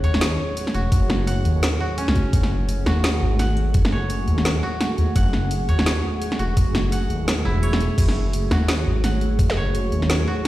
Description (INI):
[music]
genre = half-time drum and bass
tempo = 170 BPM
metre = 4/4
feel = swing 58% on 16ths, half-time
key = F# dorian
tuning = A4 = 440 Hz
[part]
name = deep dark ambient pad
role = sustained chords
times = 0.0-10.5 s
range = A3 to F#5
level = -28 LUFS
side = right 1 dB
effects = chorus, built-in reverb, sidechain pumping
[part]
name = koto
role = arpeggios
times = 0.0-10.5 s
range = C#4 to F#5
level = -30 LUFS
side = right 1 dB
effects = dub echo
[part]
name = dark detuned saw bass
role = bass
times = 0.0-10.3 s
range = E1 to D#2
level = -21 LUFS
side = equal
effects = none
[part]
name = drum and bass drum kit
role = drums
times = 0.0-10.5 s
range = crash cymbal, hi-hat, snare drum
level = -25 LUFS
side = equal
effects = overdrive, studio ambience
[part]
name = electronic kick drum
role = drums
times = 0.9-9.5 s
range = none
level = -19 LUFS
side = equal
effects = overdrive, studio ambience
[sound]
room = light reverb, digital ambience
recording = played on a big sound system in a bare room, stone room reverb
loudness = -18 LUFS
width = side -16 dB against mid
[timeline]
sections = 0.0-10.5 A section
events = none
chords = 0.0 F#madd9